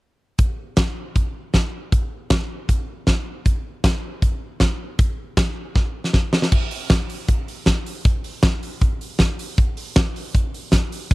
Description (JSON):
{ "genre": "indie pop", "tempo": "157 BPM", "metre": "4/4", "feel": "straight", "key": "none", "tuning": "none", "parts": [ { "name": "big rock drum kit", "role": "drums", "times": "0.4-11.1 s", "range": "crash cymbal, hi-hat, kick drum, snare drum", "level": "-18 LUFS", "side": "equal", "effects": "none" } ], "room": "light reverb", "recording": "dry, close 1970s-style studio recording", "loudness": "-19 LUFS", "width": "side -21 dB against mid", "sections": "0.4-6.5 A section; 6.5-11.1 B section", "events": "drum fill 5.8-6.5", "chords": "none" }